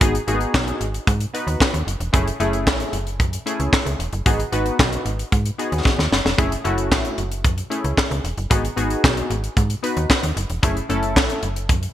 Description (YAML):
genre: early-eighties boogie funk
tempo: 113 BPM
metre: 4/4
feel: straight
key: F# dorian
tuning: A4 = 440 Hz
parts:
  - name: funky polysynth comp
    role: accompaniment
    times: 0.0-11.5 s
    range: A3 to B4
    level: -24 LUFS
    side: left 1 dB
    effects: chorus
  - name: slap-like FM bass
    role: bass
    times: 0.0-11.9 s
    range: E1 to G#2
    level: -24 LUFS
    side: right 1 dB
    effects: none
  - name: tight funk drum kit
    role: drums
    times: 0.0-11.9 s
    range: handclaps, hi-hat, kick drum, snare drum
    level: -19 LUFS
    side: equal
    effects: gated reverb
room: light reverb, small room ambience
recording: bright 1980s-style digital production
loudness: -18 LUFS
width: side -12 dB against mid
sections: 0.0-11.9 A section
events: drum fill 5.9-6.4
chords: 0.0 G#m7; 2.1 F#m9; 4.3 G#m7; 6.4 F#m9; 8.5 G#m7; 10.6 F#m7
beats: | 0.01 0.54 1.07 1.60 | 2.13 2.67 3.20 3.73 | 4.26 4.79 5.32 5.85 | 6.38 6.91 7.45 7.98 | 8.51 9.04 9.57 10.10 | 10.63 11.16 11.69